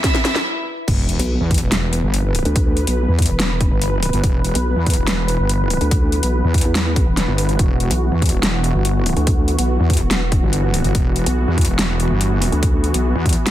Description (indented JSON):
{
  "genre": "heavy wobble dubstep",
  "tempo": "143 BPM",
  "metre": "4/4",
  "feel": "half-time",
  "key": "E minor",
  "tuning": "A4 = 440 Hz",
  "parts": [
    { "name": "supersaw chords", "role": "sustained chords", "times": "0.0-13.5 s", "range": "E2 to B4", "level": "-24 LUFS", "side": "right 1 dB", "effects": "vintage 12-bit sampler grit, sidechain pumping, low-pass filter" },
    { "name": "dubstep drum kit", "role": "drums", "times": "0.0-13.5 s", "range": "crash cymbal, hi-hat, snare drum", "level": "-22 LUFS", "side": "left 1 dB", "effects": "none" },
    { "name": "electronic kick drum", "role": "drums", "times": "0.0-13.3 s", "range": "none", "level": "-18 LUFS", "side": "equal", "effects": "none" },
    { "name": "warbly tape-like pad", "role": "texture", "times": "0.5 s", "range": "E4 to B5", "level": "-34 LUFS", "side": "left 2 dB", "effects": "none" },
    { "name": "wobble bass", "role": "bass", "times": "0.9-13.3 s", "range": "E1 to E2", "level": "-18 LUFS", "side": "equal", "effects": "chorus, overdrive" },
    { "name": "sub drop and swell", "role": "sound effects", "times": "0.9-2.6, 13.5 s", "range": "none", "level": "-28 LUFS", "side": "equal", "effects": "none" },
    { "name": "vowel-sweep wobble bass", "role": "bass", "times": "1.2-13.1 s", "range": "E1 to E2", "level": "-18 LUFS", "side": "equal", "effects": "chorus, overdrive" }
  ],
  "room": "little or no reverb",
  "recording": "dense, heavily limited modern master",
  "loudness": "-15 LUFS",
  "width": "side -13 dB against mid",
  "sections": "0.9-13.5 A section",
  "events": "drum fill 0.0-0.5; stop 0.5-0.9; drop 0.9-13.5; impact 0.9-2.6",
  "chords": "0.0 E5"
}